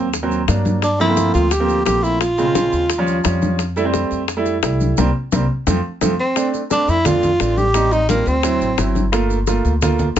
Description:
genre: Afro-Cuban jazz.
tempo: 174 BPM.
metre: 4/4.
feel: straight.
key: F major.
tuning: A4 = 441 Hz.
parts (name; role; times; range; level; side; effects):
warm upright piano; accompaniment; 0.0-10.2 s; Db3 to F4; -20 LUFS; right 3 dB; none.
upright bass; bass; 0.0-10.2 s; G1 to G2; -21 LUFS; equal; none.
bongos; percussion; 0.1-10.2 s; none; -23 LUFS; left 10 dB; none.
congas; percussion; 0.1-10.2 s; none; -24 LUFS; left 1 dB; none.
maracas; percussion; 0.1-10.2 s; none; -31 LUFS; right 5 dB; none.
warm tenor saxophone; melody; 0.8-3.4, 6.2-9.0 s; Bb3 to G4; -17 LUFS; equal; none.
room: light reverb.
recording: nothing above 7.8 kHz.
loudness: -15 LUFS.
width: side -10 dB against mid.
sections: 0.0-6.4 A section; 6.4-10.2 B section.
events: band accent 5.0-6.4; drum fill 5.3-6.4.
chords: 0.0 Ab9 (rootless); 0.8 Gm11; 2.2 Bbm7; 2.9 Eb9; 3.6 Fmaj9; 5.0 C5; 5.7 F; 6.4 F6/A; 7.7 Am7b5; 8.4 D7; 9.1 Gm7.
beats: 0.14 0.48 | 0.83 1.17 1.52 1.86 | 2.21 2.56 2.90 3.25 | 3.59 3.94 4.28 4.63 | 4.98 5.32 5.67 6.01 | 6.36 6.71 7.05 7.40 | 7.75 8.09 8.44 8.78 | 9.13 9.47 9.82 10.17.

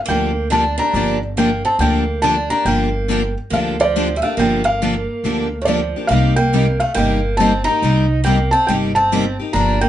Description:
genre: acoustic string swing (jazz manouche).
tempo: 140 BPM.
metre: 4/4.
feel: swing 65% on 8ths.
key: G minor.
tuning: A4 = 439 Hz.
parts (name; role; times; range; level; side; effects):
felt-muted upright piano; melody; 0.1-9.9 s; C#5 to Bb5; -19 LUFS; equal; none.
picked steel-string acoustic guitar; second line; 0.1-9.9 s; Eb3 to Eb4; -23 LUFS; right 4 dB; none.
picked steel-string acoustic guitar; accompaniment; 0.1-9.8 s; C3 to G4; -21 LUFS; left 5 dB; none.
picked steel-string acoustic guitar; accompaniment; 0.1-9.8 s; C3 to G4; -24 LUFS; right 5 dB; none.
upright bass; bass; 0.1-9.9 s; G1 to D2; -21 LUFS; equal; none.
room: moderate small room reverb, RT60 0.5 s.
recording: nothing above 10.6 kHz.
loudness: -14 LUFS.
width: side -12 dB against mid.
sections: 0.0-9.9 A section.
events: none.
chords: 0.0 Gm7; 6.1 Cm7.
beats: 0.08 0.51 | 0.94 1.38 1.81 2.24 | 2.67 3.10 3.53 3.96 | 4.39 4.82 5.25 5.68 | 6.11 6.54 6.96 7.39 | 7.83 8.26 8.69 9.12 | 9.55.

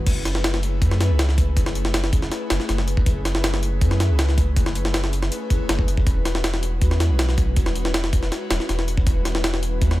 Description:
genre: drum and bass, jungle.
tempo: 160 BPM.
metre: 4/4.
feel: straight.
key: F# minor.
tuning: A4 = 440 Hz.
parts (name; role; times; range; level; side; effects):
airy breathy pad; sustained chords; 0.0-10.0 s; G#3 to B4; -29 LUFS; left 2 dB; chorus.
soft dub sub bass; bass; 0.0-10.0 s; E1 to F#2; -22 LUFS; equal; none.
jungle sampler-style drum kit; drums; 0.1-10.0 s; crash cymbal, hi-hat, kick drum, snare drum; -21 LUFS; equal; small room ambience.
room: digital ambience.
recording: none.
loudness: -18 LUFS.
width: side -17 dB against mid.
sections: 0.1-10.0 A section.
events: drop 0.1-10.0.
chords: 0.1 F#m11; 6.1 E6.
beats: | 0.07 0.44 0.81 1.19 | 1.56 1.94 2.31 2.69 | 3.06 3.44 3.81 4.19 | 4.57 4.94 5.32 5.69 | 6.07 6.44 6.82 7.19 | 7.57 7.94 8.31 8.69 | 9.06 9.44 9.81.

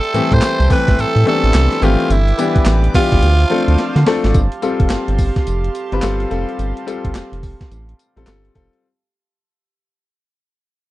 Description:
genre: R&B, new jack swing.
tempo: 107 BPM.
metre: 4/4.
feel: swing 62% on 16ths.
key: unclear.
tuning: A4 = 442 Hz.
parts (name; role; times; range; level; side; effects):
raspy tenor saxophone; melody; 0.0-4.0 s; E4 to C5; -19 LUFS; right 2 dB; slapback echo.
chorused pulse-width pad; sustained chords; 0.0-8.8 s; G4 to D6; -27 LUFS; right 4 dB; none.
gated 80s digital drum machine; drums; 0.0-8.8 s; handclaps, hi-hat, kick drum, snare drum, tambourine; -18 LUFS; equal; gated reverb, gated reverb snare, vintage 12-bit sampler grit.
clear concert grand piano; accompaniment; 0.1-8.9 s; E3 to B4; -19 LUFS; left 4 dB; none.
round analog bass; bass; 0.1-8.7 s; F1 to D3; -15 LUFS; equal; none.
room: little or no reverb.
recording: dry, close 1970s-style studio recording.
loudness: -13 LUFS.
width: side -17 dB against mid.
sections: 0.0-4.3 A section; 4.3-8.8 B section.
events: drum fill 3.8-4.3; fade-out 4.3-8.8.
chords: 0.0 Am7; 2.1 Em7/G; 3.2 Dm7; 4.3 G9sus4.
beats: 0.42 0.98 1.54 | 2.10 2.67 3.23 3.79 | 4.35 4.91 5.47 6.03 | 6.59 7.15 7.71 8.27.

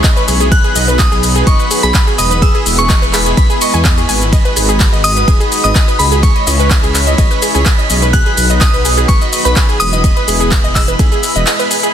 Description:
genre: progressive house.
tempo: 126 BPM.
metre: 4/4.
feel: straight.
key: unclear.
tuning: A4 = 440 Hz.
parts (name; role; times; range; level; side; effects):
glassy synth bell; melody; 0.0-11.7 s; B5 to F#6; -19 LUFS; left 1 dB; chorus, sidechain pumping, dub echo.
soft synth bell; second line; 0.0-11.7 s; B5 to F#6; -25 LUFS; right 2 dB; none.
supersaw pad; sustained chords; 0.0-11.9 s; F#3 to C#5; -20 LUFS; equal; sidechain pumping.
wide unison pluck; arpeggios; 0.0-11.9 s; G#4 to G#5; -18 LUFS; right 1 dB; sidechain pumping, digital delay.
deep house drum kit; drums; 0.0-11.9 s; handclaps, hi-hat, ride cymbal, shaker; -17 LUFS; left 1 dB; sidechain pumping on hats, sidechain pumping on cymbals, sidechain pumping on perc.
electronic kick drum; drums; 0.0-11.1 s; none; -12 LUFS; equal; none.
drifting glass-harmonics texture; texture; 0.0-11.9 s; B5; -24 LUFS; right 1 dB; chorus, built-in reverb, sidechain pumping.
dark detuned saw bass; bass; 0.3-11.4 s; D#1 to E2; -15 LUFS; equal; sidechain pumping.
room: digital ambience.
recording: dense, heavily limited modern master.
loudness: -9 LUFS.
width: side -9 dB against mid.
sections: 0.0-11.9 A section.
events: drop 0.0-11.9; kick drops out 11.5-11.9.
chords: 0.0 C#m; 0.5 B; 2.4 E; 4.3 G#m7; 6.2 C#m; 8.1 B; 10.0 E.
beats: 0.04 | 0.52 0.99 1.47 1.95 | 2.42 2.90 3.37 3.85 | 4.33 4.80 5.28 5.75 | 6.23 6.71 7.18 7.66 | 8.14 8.61 9.09 9.56 | 10.04 10.52 10.99 11.47.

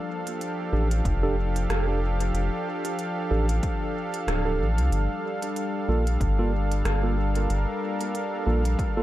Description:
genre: ambient dub.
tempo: 93 BPM.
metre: 4/4.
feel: swing 56% on 16ths.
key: unclear.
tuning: A4 = 443 Hz.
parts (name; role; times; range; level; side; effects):
warm analog pad; sustained chords; 0.0-9.0 s; F3 to F5; -29 LUFS; equal; chorus.
organic electronic drum kit; drums; 0.3-8.9 s; hi-hat, rim click; -36 LUFS; right 1 dB; overdrive, dub echo.
mellow tine electric piano; stabs; 0.7-9.0 s; Bb3 to A4; -32 LUFS; right 3 dB; auto-pan, dub echo.
round analog bass; bass; 0.7-8.8 s; D1 to C2; -24 LUFS; equal; none.
electronic kick drum; drums; 1.1-8.9 s; none; -28 LUFS; equal; overdrive.
room: digital ambience.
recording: dark, warm production.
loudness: -23 LUFS.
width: side -14 dB against mid.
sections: 0.0-9.0 A section.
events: none.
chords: 0.0 F69; 4.9 Gm9.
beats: 0.41 1.05 1.70 | 2.34 2.99 3.63 4.28 | 4.92 5.57 6.21 6.86 | 7.50 8.15 8.79.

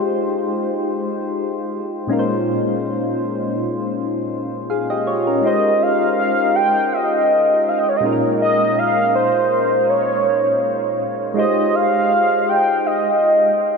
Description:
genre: R&B.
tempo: 81 BPM.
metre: 4/4.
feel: swing 54% on 16ths.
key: F minor.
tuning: A4 = 440 Hz.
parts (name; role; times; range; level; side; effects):
soft electric-piano-like synth keys; accompaniment; 0.0-13.8 s; Bb2 to F5; -20 LUFS; left 1 dB; chorus, phaser.
warm velvety synth lead; melody; 5.5-13.8 s; C5 to G5; -16 LUFS; equal; chorus, analog delay.
room: wet huge ambient reverb, RT60 7.7 s.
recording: dreamy mix soaked in reverb.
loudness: -16 LUFS.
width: side -4 dB against mid.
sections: 0.0-5.4 A section; 5.4-13.8 B section.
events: none.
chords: 0.0 Fm9; 2.1 Bbm11; 5.4 Fm9; 8.0 Bbm11; 11.4 Fm9.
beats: 0.25 0.99 1.73 | 2.47 3.21 3.96 4.70 | 5.44 6.18 6.92 7.66 | 8.40 9.14 9.88 10.62 | 11.36 12.10 12.84 13.59.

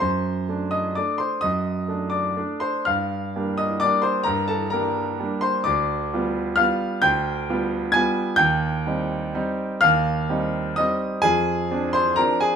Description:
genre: classical, piano waltz.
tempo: 116-137 BPM.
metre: 3/4.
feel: rubato.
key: G minor, C minor from 5.7 s.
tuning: A4 = 440 Hz.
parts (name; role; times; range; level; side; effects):
clear grand piano; solo; 0.0-12.6 s; D2 to Ab6; -20 LUFS; equal; none.
room: moderate large studio reverb, RT60 0.9 s.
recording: none.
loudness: -20 LUFS.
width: side -7 dB against mid.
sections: 0.0-12.6 A section.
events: none.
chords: 0.0 D7/F#; 2.9 Gm; 5.7 G7/D; 8.4 Cm/Eb; 11.3 Dm7b5/F.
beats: | 0.01 0.48 0.96 | 1.43 1.89 2.38 | 2.88 3.35 3.82 | 4.28 4.74 5.21 | 5.67 6.12 6.59 | 7.04 7.49 7.95 | 8.41 8.87 9.36 | 9.83 10.29 10.78 | 11.25 11.71 12.19.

